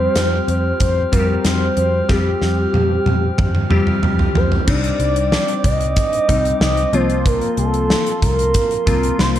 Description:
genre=1980s-style pop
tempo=93 BPM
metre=4/4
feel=straight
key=unclear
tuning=A4 = 440 Hz
part: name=expressive portamento lead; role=melody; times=0.0-9.4 s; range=G4 to Eb5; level=-20 LUFS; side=right 1 dB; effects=chorus, digital delay
part: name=glassy digital keys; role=accompaniment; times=0.0-9.4 s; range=F3 to G4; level=-22 LUFS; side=left 4 dB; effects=chorus
part: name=glass harmonica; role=sustained chords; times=0.0-9.4 s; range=Bb3 to F6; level=-27 LUFS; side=right 1 dB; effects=none
part: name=vintage muted picked electric bass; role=bass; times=0.0-9.4 s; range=C2 to F2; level=-20 LUFS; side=equal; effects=none
part: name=gated 80s drum kit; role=drums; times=0.2-9.4 s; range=crash cymbal, hi-hat, kick drum, snare drum, toms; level=-19 LUFS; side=equal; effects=none
room=light reverb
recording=dark, warm production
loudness=-14 LUFS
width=side -11 dB against mid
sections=0.0-4.7 A section; 4.7-9.4 B section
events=drum fill 2.1-4.7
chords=0.0 Fsus2; 4.7 Cmadd9; 6.9 Fsus4/C

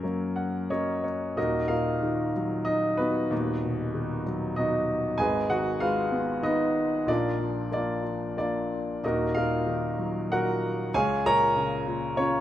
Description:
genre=classical, lyrical solo piano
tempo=94 BPM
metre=3/4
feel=uneven beats, rubato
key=Eb minor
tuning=A4 = 440 Hz
part: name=dark grand piano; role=solo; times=0.0-12.4 s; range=Eb1 to Bb5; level=-25 LUFS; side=equal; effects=none
room=light reverb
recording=none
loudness=-25 LUFS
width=side -12 dB against mid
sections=0.0-1.4 A section; 1.4-12.4 B section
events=grand piano fill 0.0-1.4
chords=0.0 F#; 1.4 Ebm; 3.3 B/D#; 5.2 Abm; 7.1 Bb; 9.0 Ebm; 10.9 Bbm/Db

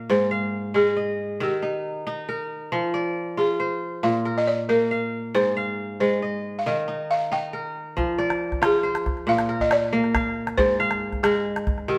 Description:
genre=west african traditional, West African string and xylophone music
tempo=92 BPM (dotted quarters)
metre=12/8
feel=straight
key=unclear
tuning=A4 = 435 Hz
part: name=balafon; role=melody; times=0.0-12.0 s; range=G4 to G5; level=-26 LUFS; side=equal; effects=none
part: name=kora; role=arpeggios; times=0.0-12.0 s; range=Ab2 to F5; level=-27 LUFS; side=equal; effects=none
part: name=calabash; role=percussion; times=8.0-11.9 s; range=none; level=-30 LUFS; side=equal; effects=none
room=wet stone room reverb, RT60 1.2 s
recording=band playing live in one room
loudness=-24 LUFS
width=mono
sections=0.0-8.0 A section; 8.0-12.0 A section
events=none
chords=0.1 Ab; 1.4 Eb; 2.7 Fm; 4.0 Bb5; 5.3 Ab; 6.7 Eb; 8.0 Fm; 9.3 Bb; 10.6 Ab

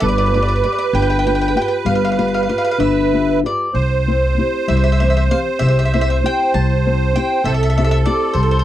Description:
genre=italian folk, Italian serenade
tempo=65 BPM (dotted quarters)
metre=6/8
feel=straight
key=C major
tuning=A4 = 440 Hz
part: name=mandolin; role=melody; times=0.0-8.6 s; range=C5 to A5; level=-21 LUFS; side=left 2 dB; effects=none
part: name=musette accordion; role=second line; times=0.0-8.6 s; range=A4 to C5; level=-20 LUFS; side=right 6 dB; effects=none
part: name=nylon-string guitar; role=accompaniment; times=0.0-8.6 s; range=C3 to C5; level=-20 LUFS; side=left 5 dB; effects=none
part: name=upright bass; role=bass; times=0.0-8.6 s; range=G1 to C2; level=-18 LUFS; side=equal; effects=none
room=light reverb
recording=dry, close 1970s-style studio recording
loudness=-14 LUFS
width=side -12 dB against mid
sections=0.0-8.6 A section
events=none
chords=0.0 G7; 3.7 C

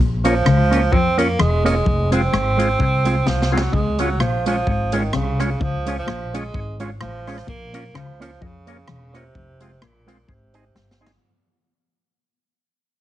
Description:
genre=ska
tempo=128 BPM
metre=4/4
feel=swing 56% on 8ths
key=Db major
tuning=A4 = 441 Hz
part: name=semi-hollow electric guitar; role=riff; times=0.0-10.9 s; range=Fb2 to F3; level=-24 LUFS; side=left 4 dB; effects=none
part: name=upright bass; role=bass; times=0.0-11.2 s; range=Fb1 to F2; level=-22 LUFS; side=equal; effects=none
part: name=warm tenor saxophone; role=melody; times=0.2-11.0 s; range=Bb2 to C4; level=-23 LUFS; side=right 3 dB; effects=none
part: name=electric guitar with an envelope filter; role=accompaniment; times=0.2-11.1 s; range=Ab3 to Ab4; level=-24 LUFS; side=right 4 dB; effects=none
part: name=percussive tonewheel organ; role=stabs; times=0.2-11.1 s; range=C4 to Db5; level=-25 LUFS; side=left 3 dB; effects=overdrive, chorus vibrato, slow rotary speaker
part: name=swinging big-band drum kit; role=drums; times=0.2-11.2 s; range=hi-hat, kick drum, rim click, snare drum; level=-25 LUFS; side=equal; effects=vintage 12-bit sampler grit
room=light reverb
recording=heavily compressed radio sound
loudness=-17 LUFS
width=side -13 dB against mid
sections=0.0-11.2 A section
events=fade-out 0.0-11.2; drum fill 3.3-3.7, 10.8-11.2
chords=0.0 Bbm; 1.9 Fm; 3.7 Db; 7.5 Bbm; 9.3 Fm; 10.3 Ab

